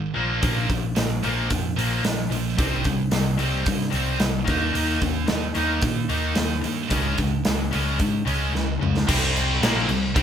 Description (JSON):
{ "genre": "hard rock", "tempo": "111 BPM", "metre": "4/4", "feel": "straight", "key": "C phrygian", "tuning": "A4 = 440 Hz", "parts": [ { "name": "cranked stack guitar", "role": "riff", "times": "0.0-10.2 s", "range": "Ab2 to Eb4", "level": "-27 LUFS", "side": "left 7 dB", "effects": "overdrive" }, { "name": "scooped high-gain guitar", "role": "riff", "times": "0.0-10.2 s", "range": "Ab2 to Eb4", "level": "-27 LUFS", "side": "right 7 dB", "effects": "distortion" }, { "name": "picked electric bass", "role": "bass", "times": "0.0-10.2 s", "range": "Ab1 to Bb2", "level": "-26 LUFS", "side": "equal", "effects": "none" }, { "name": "big rock drum kit", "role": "drums", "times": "0.4-10.2 s", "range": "crash cymbal, hi-hat, kick drum, snare drum, toms", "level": "-25 LUFS", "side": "right 1 dB", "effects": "none" }, { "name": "heavy high-gain guitar", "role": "riff", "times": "9.1-10.2 s", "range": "Bb2 to C4", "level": "-27 LUFS", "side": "left 1 dB", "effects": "distortion" } ], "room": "light reverb", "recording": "band playing live in one room", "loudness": "-20 LUFS", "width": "side -8 dB against mid", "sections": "0.0-9.1 A section; 9.1-10.2 B section", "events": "drum fill 8.5-9.1", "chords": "0.2 Bb5; 2.6 C5; 4.5 Eb5; 6.9 Db5; 9.1 C5", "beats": "| 0.42 0.96 1.50 2.04 | 2.58 3.12 3.67 4.21 | 4.75 5.29 5.83 6.37 | 6.91 7.45 7.99 8.53 | 9.07 9.61 10.15" }